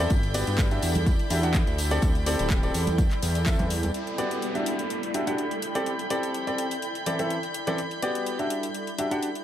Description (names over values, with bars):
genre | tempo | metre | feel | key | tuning
piano house | 125 BPM | 4/4 | swing 53% on 16ths | G major | A4 = 444 Hz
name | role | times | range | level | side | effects
clear studio violin section | sustained chords | 0.0-9.4 s | B5 to G6 | -35 LUFS | equal | sidechain pumping, low-pass filter
clear upright piano | riff | 0.0-9.3 s | E3 to F#5 | -29 LUFS | left 1 dB | sidechain pumping, dub echo
fat analog bass | bass | 0.0-3.9 s | D1 to G2 | -27 LUFS | equal | sidechain pumping
tambourine and congas | percussion | 0.0-3.9 s | none | -35 LUFS | right 2 dB | none
ethereal airy pad | texture | 0.0-9.4 s | E4 to G5 | -33 LUFS | right 1 dB | ensemble chorus, built-in reverb, sidechain pumping
electronic kick drum | drums | 0.1-3.6 s | none | -24 LUFS | equal | none
house drum kit | drums | 0.1-9.4 s | handclaps, hi-hat | -35 LUFS | left 2 dB | overdrive
downlifter | sound effects | 3.9-7.8 s | none | -37 LUFS | equal | none
room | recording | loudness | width
light reverb | none | -24 LUFS | side -11 dB against mid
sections
0.0-3.9 A section; 3.9-9.4 B section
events
filter sweep on violin section 3.9-9.4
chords
0.1 Gmaj7; 0.8 Em9; 1.8 D7sus4; 3.0 C69/E; 3.9 Gmaj7; 4.7 Em9; 5.6 D7sus4; 6.8 C69/E; 7.8 Gmaj7; 8.5 Em9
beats
| 0.10 0.58 1.06 1.54 | 2.02 2.50 2.98 3.46 | 3.94 4.42 4.90 5.38 | 5.86 6.34 6.82 7.30 | 7.78 8.26 8.74 9.22